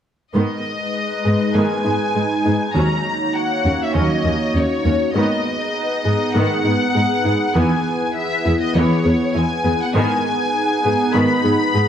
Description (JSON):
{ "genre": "cinematic, hybrid orchestral and electronic film score", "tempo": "100 BPM", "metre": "4/4", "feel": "straight", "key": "G# minor", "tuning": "A4 = 442 Hz", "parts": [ { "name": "thumb-piano-like synth pluck", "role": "arpeggios", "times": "0.3-11.9 s", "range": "D#3 to G#4", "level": "-24 LUFS", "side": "left 2 dB", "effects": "chorus, digital delay" }, { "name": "rich symphonic violin section", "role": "melody", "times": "0.4-11.9 s", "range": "C#5 to B5", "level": "-22 LUFS", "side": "left 3 dB", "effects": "none" }, { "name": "warm symphonic viola section", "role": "accompaniment", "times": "0.4-11.8 s", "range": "D#3 to G#4", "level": "-24 LUFS", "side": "equal", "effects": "none" }, { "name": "hollow soft pad", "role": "sustained chords", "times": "0.6-11.9 s", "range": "G#3 to C#5", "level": "-22 LUFS", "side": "right 1 dB", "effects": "chorus" }, { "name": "dark symphonic cello section", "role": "bass", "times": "0.4-11.8 s", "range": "D#2 to G#2", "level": "-22 LUFS", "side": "right 1 dB", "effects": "none" } ], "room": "moderate scoring stage reverb, RT60 1.7 s", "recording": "none", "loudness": "-16 LUFS", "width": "side -9 dB against mid", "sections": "0.4-11.9 A section", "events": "none", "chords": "0.4 G#m; 2.8 D#m7; 5.2 G#m; 7.6 E; 10.0 G#m" }